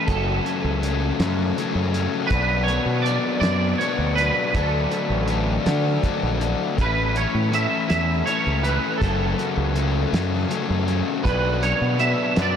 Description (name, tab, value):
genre	indie rock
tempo	54 BPM (dotted quarters)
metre	6/8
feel	straight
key	unclear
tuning	A4 = 440 Hz
part	twangy electric guitar	melody	0.0-12.6 s	A4 to E5	-25 LUFS	right 4 dB	ensemble chorus
part	raw garage guitar	riff	0.0-12.6 s	F#2 to E4	-24 LUFS	left 5 dB	overdrive
part	growling fingered electric bass	bass	0.1-12.6 s	F#1 to D3	-23 LUFS	right 1 dB	overdrive
part	cloth-damped thuddy drum kit	drums	0.1-12.5 s	hi-hat, kick drum, snare drum	-28 LUFS	right 1 dB	none
room	moderate huge ambient reverb, RT60 6.2 s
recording	dreamy mix soaked in reverb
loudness	-19 LUFS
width	side -8 dB against mid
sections	0.0-12.6 A section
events	none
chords	0.1 F#m; 2.3 Bm; 4.5 D; 6.8 A; 9.0 F#m; 11.3 Bm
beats	| 0.07 1.19 | 2.31 3.43 | 4.54 5.66 | 6.78 7.90 | 9.02 10.14 | 11.26 12.38